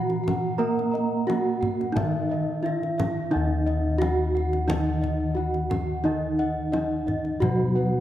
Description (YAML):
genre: Javanese gamelan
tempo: 88 BPM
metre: 4/4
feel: straight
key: Eb pelog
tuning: A4 = 441 Hz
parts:
  - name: gamelan-type bronze metallophone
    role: melody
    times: 0.0-8.0 s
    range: Eb4 to Bb4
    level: -28 LUFS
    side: right 1 dB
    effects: none
  - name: gamelan-type bronze metallophone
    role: accompaniment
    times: 0.0-8.0 s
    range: Eb3 to Bb3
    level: -29 LUFS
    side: right 2 dB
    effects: none
  - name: gamelan-type bossed gongs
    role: arpeggios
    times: 0.0-8.0 s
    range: Cb5 to Gb5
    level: -33 LUFS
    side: left 2 dB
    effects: none
  - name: gamelan-type bronze metallophone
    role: arpeggios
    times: 0.0-8.0 s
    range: Eb5 to Bb5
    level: -35 LUFS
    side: right 2 dB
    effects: none
  - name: gamelan-type bossed gongs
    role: bass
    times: 0.0-8.0 s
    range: Eb2 to Bb4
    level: -28 LUFS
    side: left 2 dB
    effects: none
  - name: kendang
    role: percussion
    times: 0.1-7.6 s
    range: none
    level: -32 LUFS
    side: left 2 dB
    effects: none
room: moderate concert hall reverb, RT60 2.2 s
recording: dark, warm production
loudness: -23 LUFS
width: side -12 dB against mid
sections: 0.0-8.0 A section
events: none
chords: none